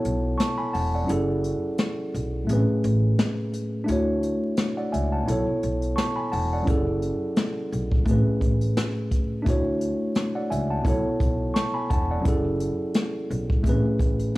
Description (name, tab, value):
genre	hip hop, boom-bap hip-hop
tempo	86 BPM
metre	4/4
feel	swing 56% on 16ths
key	F# minor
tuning	A4 = 440 Hz
part	mellow tine electric piano	accompaniment	0.0-14.4 s	A2 to C#6	-25 LUFS	equal	high-pass filter, low-pass filter
part	jazz brush drum kit	drums	0.0-14.4 s	hi-hat, kick drum, rim click, snare drum	-25 LUFS	equal	none
part	upright bass	bass	0.1-14.3 s	E1 to D2	-27 LUFS	equal	none
room	little or no reverb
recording	dry, gritty hardware recording, vinyl crackle, studio reverb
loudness	-22 LUFS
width	side -18 dB against mid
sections	0.0-14.4 A section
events	break 0.0-6.7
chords	0.0 B7sus4; 1.1 F#m7; 2.5 Amaj7; 3.9 Dmaj7; 5.3 B7sus4; 6.7 F#m7; 8.1 Amaj7; 9.5 Dmaj7; 10.9 B7sus4; 12.3 F#m7; 13.6 Amaj7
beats	0.39 | 1.09 1.79 2.49 3.18 | 3.88 4.58 5.28 5.97 | 6.67 7.37 8.07 8.77 | 9.46 10.16 10.86 11.55 | 12.25 12.95 13.65 14.35